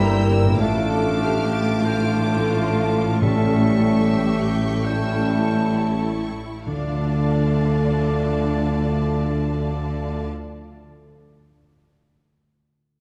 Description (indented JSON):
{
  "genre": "classical, slow romantic movement for symphony orchestra",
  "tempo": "31-49 BPM",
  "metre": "4/4",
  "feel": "rubato",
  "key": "D minor",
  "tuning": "A4 = 440 Hz",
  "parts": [
    { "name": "warm studio violin section", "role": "melody", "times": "0.0-10.3 s", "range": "A5 to E6", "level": "-38 LUFS", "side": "equal", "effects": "none" },
    { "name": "clear oboe", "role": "second line", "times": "0.0-10.3 s", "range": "D5 to G5", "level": "-36 LUFS", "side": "equal", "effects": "none" },
    { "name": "rich studio violin section", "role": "second line", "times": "0.0-10.3 s", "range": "D5 to A6", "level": "-40 LUFS", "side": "equal", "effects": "none" },
    { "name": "silver concert flute", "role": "second line", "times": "0.0-10.3 s", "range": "F5 to Bb5", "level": "-36 LUFS", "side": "equal", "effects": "none" },
    { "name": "warm clarinet", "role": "second line", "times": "0.0-10.3 s", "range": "C#4 to A4", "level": "-34 LUFS", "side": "equal", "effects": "none" },
    { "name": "mellow bassoon", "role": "accompaniment", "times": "0.0-10.3 s", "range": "D3 to A3", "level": "-32 LUFS", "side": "equal", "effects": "none" },
    { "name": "rich studio viola section", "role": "accompaniment", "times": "0.0-10.3 s", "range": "D4 to Bb4", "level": "-34 LUFS", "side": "equal", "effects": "none" },
    { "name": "clear trombone section", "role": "sustained chords", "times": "0.0-10.3 s", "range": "E3 to A3", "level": "-35 LUFS", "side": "equal", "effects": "none" },
    { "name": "mellow French horn section", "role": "sustained chords", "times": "0.0-10.3 s", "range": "Bb3 to Bb4", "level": "-34 LUFS", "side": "equal", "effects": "none" },
    { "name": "concert harp", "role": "arpeggios", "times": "0.0-10.6 s", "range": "G2 to D5", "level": "-32 LUFS", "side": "equal", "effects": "none" },
    { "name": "dark tuba", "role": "bass", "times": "0.0-10.3 s", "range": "G1 to D2", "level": "-28 LUFS", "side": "equal", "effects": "none" },
    { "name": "rich studio cello section", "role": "bass", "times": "0.0-10.3 s", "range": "G2 to D3", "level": "-26 LUFS", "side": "equal", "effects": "none" },
    { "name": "rich studio double bass section", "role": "bass", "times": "0.0-10.3 s", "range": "G1 to D2", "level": "-29 LUFS", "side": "equal", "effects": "none" },
    { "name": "timpani", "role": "percussion", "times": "3.2-10.3 s", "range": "A2 to D3", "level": "-31 LUFS", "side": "equal", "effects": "none" }
  ],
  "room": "wet concert hall reverb, RT60 2.5 s",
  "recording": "none",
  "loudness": "-21 LUFS",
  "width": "mono",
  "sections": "0.0-6.7 A section; 6.7-13.0 B section",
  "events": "slowing down 0.0-6.7",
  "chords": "0.0 Edim/G; 0.6 Dm/A; 3.2 A7; 6.7 Dm"
}